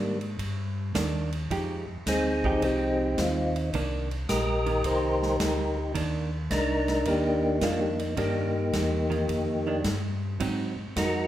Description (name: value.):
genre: soul jazz organ trio.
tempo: 108 BPM.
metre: 4/4.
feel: swing 68% on 8ths.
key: C minor.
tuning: A4 = 440 Hz.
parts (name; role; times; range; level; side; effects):
percussive tonewheel organ; melody; 0.0-11.3 s; G3 to Eb5; -26 LUFS; equal; slow rotary speaker.
hollow-body jazz guitar; accompaniment; 0.0-10.7 s; Eb3 to G4; -33 LUFS; right 3 dB; none.
mellow tonewheel organ; bass; 0.0-11.3 s; Bb1 to Ab2; -31 LUFS; equal; slow rotary speaker.
swinging big-band drum kit; drums; 0.2-11.1 s; hi-hat, kick drum, ride cymbal, snare drum; -34 LUFS; equal; none.
room: light reverb.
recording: none.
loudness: -25 LUFS.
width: side -12 dB against mid.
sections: 0.0-11.3 A section.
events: none.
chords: 0.0 Cm9 (rootless); 1.5 Fm9; 3.7 Cm9; 10.4 Ab7.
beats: 0.39 0.94 | 1.50 2.06 2.61 3.17 | 3.73 4.28 4.84 5.40 | 5.95 6.51 7.07 7.62 | 8.18 8.73 9.29 9.85 | 10.40 10.96.